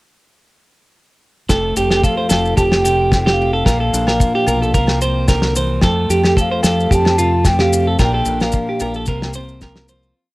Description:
highlife guitar band; 111 BPM; 4/4; swing 54% on 16ths; F major; A4 = 440 Hz
picked steel-string acoustic guitar; accompaniment; 1.5-10.3 s; F2 to G4; -22 LUFS; left 2 dB; cassette tape
clean electric guitar; arpeggios; 1.5-10.1 s; F4 to C5; -18 LUFS; right 2 dB; cassette tape
deep dub fingered electric bass; bass; 1.5-10.1 s; F1 to F2; -20 LUFS; equal
damped 70s drum kit; drums; 1.5-9.9 s; kick drum, snare drum; -16 LUFS; equal; cassette tape
agogo bells; percussion; 1.5-9.8 s; -30 LUFS; left 2 dB
maracas; percussion; 1.5-10.1 s; -26 LUFS; left 3 dB
mellow hollow alto ocarina; melody; 2.0-9.0 s; F5 to A5; -21 LUFS; left 1 dB; cassette tape
light reverb, studio ambience; home recording on cassette; -13 LUFS; side -20 dB against mid
1.5-10.2 groove
fade-out 8.0-10.2
1.5 Fadd9; 3.7 Bb6; 4.7 C9; 5.8 Fadd9; 8.0 Bb6; 9.1 C7sus4
| 1.50 2.04 2.58 3.12 | 3.66 4.20 4.75 5.29 | 5.83 6.37 6.91 7.45 | 7.99 8.53 9.07 9.61

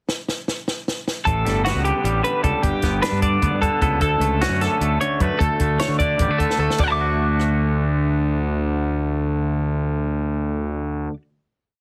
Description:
math rock and midwest emo; 302 BPM (eighths); 7/8; straight; D major; A4 = 441 Hz
compact cocktail drum kit; drums; 0.1-7.5 s; crash cymbal, hi-hat, kick drum, rim click, snare drum; -27 LUFS; equal
twangy electric guitar; accompaniment; 1.3-11.2 s; D2 to F#4; -27 LUFS; equal; warbly pitch drift
twelve-string electric guitar; arpeggios; 1.3-11.1 s; F#4 to D6; -24 LUFS; equal
fuzz fingered electric bass; bass; 1.3-11.1 s; G1 to D3; -25 LUFS; equal; overdrive
light reverb; heavily compressed radio sound; -21 LUFS; mono
0.0-1.3 pickup bar; 1.3-6.8 A section; 6.8-9.6 final chord
drum fill 0.1-1.3, 6.5-6.8
0.0 N.C.; 1.3 A9sus4; 2.6 Gadd9; 4.0 Dmaj7; 5.4 D5; 6.8 D
0.07 0.27 0.46 0.66 0.86 1.05 | 1.25 1.45 1.65 1.84 2.04 2.23 2.43 | 2.63 2.83 3.02 3.22 3.42 3.61 3.81 | 4.01 4.21 4.41 4.60 4.80 5.00 5.20 | 5.40 5.60 5.80 6.00 6.20 6.39 6.59 | 6.80 7.00 7.20 7.40 7.60 7.80 8.00 | 8.20 8.40 8.61 8.81 9.01 9.21 9.41

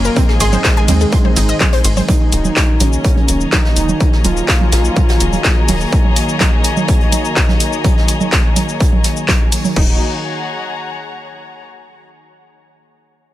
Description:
melodic techno; 125 BPM; 4/4; straight; Eb dorian; A4 = 440 Hz
fat analog lead; melody; 0.0-5.8 s; Ab3 to F4; -22 LUFS; equal; chorus, sidechain pumping, digital delay
glassy wavetable pluck; second line; 0.0-2.0 s; Ab4 to Bb4; -26 LUFS; right 1 dB
warm analog pad; sustained chords; 0.0-10.0 s; Eb3 to Bb5; -23 LUFS; right 1 dB; wide subtle chorus, sidechain pumping
analog pluck; arpeggios; 0.0-2.0, 9.8-10.0 s; C4 to C6; -23 LUFS; left 2 dB; chorus, sidechain pumping, digital delay
tight sequencer bass; bass; 0.0-5.9, 9.8-10.0 s; Eb1 to Eb2; -16 LUFS; equal; sidechain pumping
techno drum kit; drums; 0.0-9.9 s; congas, crash cymbal, handclaps, hi-hat, ride cymbal, shaker; -18 LUFS; right 2 dB; sidechain pumping on perc, sidechain pumping on hats, sidechain pumping on cymbals
muted studio string section; texture; 0.0-11.6 s; Ab4 to C6; -24 LUFS; left 4 dB; sidechain pumping
electronic kick drum; drums; 0.2-9.9 s; -14 LUFS; equal; distortion
vintage brush drum kit; drums; 0.2-9.6 s; hi-hat, snare drum; -27 LUFS; right 2 dB; high-pass filter on hats, high-pass filter on snare, high-pass filter on room
little or no reverb; -11 LUFS; side -14 dB against mid
0.0-2.1 A section; 2.1-9.8 B section; 9.8-11.7 C section
drop 0.0-2.1
0.2 Ab; 2.1 Ebm
| 0.16 0.64 1.12 1.60 | 2.08 2.56 3.04 3.52 | 4.00 4.48 4.96 5.44 | 5.92 6.40 6.88 7.36 | 7.84 8.32 8.80 9.28 | 9.76 10.24 10.72 11.20

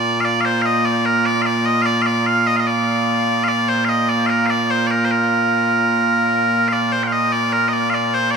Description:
scottish traditional; 74 BPM; 2/4; straight; Bb major; A4 = 440 Hz
loud bright bagpipes; solo; 0.0-8.4 s; Bb2 to G5; -15 LUFS; right 1 dB
moderate huge ambient reverb, RT60 7.9 s; small room ambience; -15 LUFS; side -6 dB against mid
0.0-6.7 A section; 6.7-8.4 A section
| 0.24 1.05 | 1.86 2.67 | 3.48 4.29 | 5.10 5.91 | 6.72 7.53 | 8.35

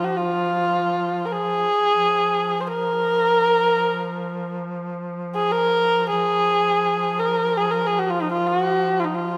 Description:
Persian modal ensemble; free time; F dastgah shur; A4 = 440 Hz
dark kamancheh; melody; 0.0-9.4 s; Eb4 to C5; -22 LUFS; equal
warm duduk; drone; 0.0-9.4 s; F3; -31 LUFS; equal
moderate concert hall reverb, RT60 2.0 s; recorded in a church or concert hall; -21 LUFS; mono
0.0-9.4 A section
free time

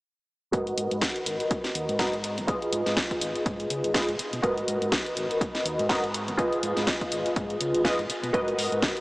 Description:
filtered disco house; 123 BPM; 4/4; swing 57% on 16ths; G# dorian; A4 = 440 Hz
funky polysynth comp; accompaniment; 0.5-9.0 s; E#4 to D#5; -27 LUFS; equal; chorus, phaser, sidechain pumping, low-pass filter
overdriven fingered electric bass; bass; 0.5-8.8 s; G#1 to C#3; -35 LUFS; equal; tube saturation, sidechain pumping, low-pass filter
electronic kick drum; drums; 0.5-8.9 s; -31 LUFS; equal
house drum kit; drums; 0.5-9.0 s; hi-hat, snare drum; -30 LUFS; equal; sidechain pumping on hats
tambourine; percussion; 0.5-8.9 s; -51 LUFS; left 1 dB
wet huge ambient reverb, RT60 4.0 s; dreamy mix soaked in reverb, small speaker sound; -24 LUFS; side -20 dB against mid
0.5-9.0 A section
filter sweep 0.5-9.0
0.5 G#m7; 2.5 C#7/G# (rootless); 4.4 G#m7; 6.4 C#7/G# (rootless); 8.3 G#m7
| 0.53 1.02 1.51 2.00 | 2.48 2.97 3.46 3.95 | 4.44 4.92 5.41 5.90 | 6.39 6.88 7.36 7.85 | 8.34 8.83

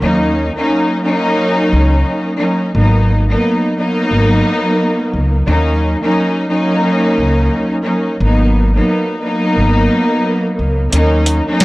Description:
hip hop, boom-bap hip-hop; 88 BPM; 4/4; swing 58% on 16ths; G# minor; A4 = 435 Hz
warm studio string section; accompaniment; 0.0-11.6 s; F#3 to D#4; -13 LUFS; equal; cassette tape
upright bass; bass; 0.0-11.4 s; G#1 to D#2; -14 LUFS; equal
booming analog drum machine; drums; 10.9-11.6 s; hi-hat, snare drum; -12 LUFS; equal
little or no reverb; dry, gritty hardware recording, cassette tape; -12 LUFS; side -20 dB against mid
0.0-11.6 A section
kick muted 10.9-11.6
0.0 D#m7; 2.7 G#m7; 5.5 D#m7; 8.2 G#m7; 10.9 D#m7
| 0.02 0.70 1.38 2.06 | 2.75 3.43 4.11 4.79 | 5.47 6.15 6.84 7.52 | 8.20 8.88 9.56 10.24 | 10.93 11.61

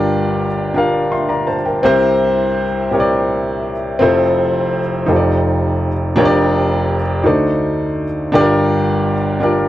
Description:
gospel; 55 BPM (dotted quarters); 6/8; straight; F major; A4 = 444 Hz
warm upright piano; solo; 0.0-9.7 s; F1 to C6; -13 LUFS; equal
light reverb; dry, close 1970s-style studio recording; -13 LUFS; side -14 dB against mid
0.0-9.7 A section
0.0 Gm7; 1.8 C7; 4.0 Fmaj7; 5.1 F13; 6.2 Bb6/F; 7.2 D7b9; 8.3 Gm7
0.75 | 1.83 2.92 | 4.00 5.08 | 6.16 7.25 | 8.33 9.41

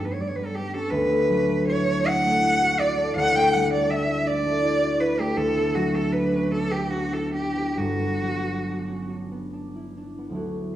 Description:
classical, impressionist duo for cello and harp; 45-57 BPM (dotted quarters); 6/8; rubato; D major; A4 = 440 Hz
rich cello; melody; 0.0-9.1 s; F#4 to G5; -24 LUFS; right 1 dB
concert harp; accompaniment; 0.0-10.8 s; G1 to F#4; -24 LUFS; equal
wet recital hall reverb, RT60 1.6 s; dark, warm production; -21 LUFS; side -12 dB against mid
0.0-10.4 A section
0.0 G; 0.9 D69; 3.2 Em11/D; 5.4 D6; 7.8 Gmaj7
| 0.91 2.06 | 3.17 4.28 | 5.38 6.51 | 7.78 9.11 | 10.38

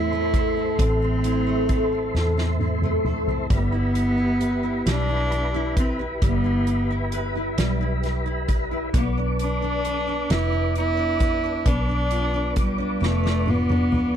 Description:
six-eight pop ballad; 44 BPM (dotted quarters); 6/8; straight; A minor; A4 = 436 Hz
warm cello; melody; 0.0-14.2 s; G3 to E4; -25 LUFS; right 1 dB
fingerpicked steel-string acoustic guitar; accompaniment; 0.0-14.2 s; A2 to B4; -28 LUFS; left 1 dB; double-tracked left and right
mellow tonewheel organ; sustained chords; 0.0-14.2 s; G4 to D6; -31 LUFS; equal; chorus vibrato, fast rotary speaker
vintage muted fingered electric bass; bass; 0.0-14.2 s; F1 to E2; -26 LUFS; equal
soft-mallet drum kit; drums; 0.3-14.1 s; hi-hat, kick drum, snare drum, toms; -25 LUFS; equal
light reverb; dry, close 1970s-style studio recording; -20 LUFS; side -9 dB against mid
0.0-14.2 A section
drum fill 2.1-3.5, 13.0-14.2
0.0 Am; 3.5 Em/G; 8.9 Bdim
| 0.79 2.15 | 3.50 4.86 | 6.22 7.58 | 8.94 10.30 | 11.66 13.02

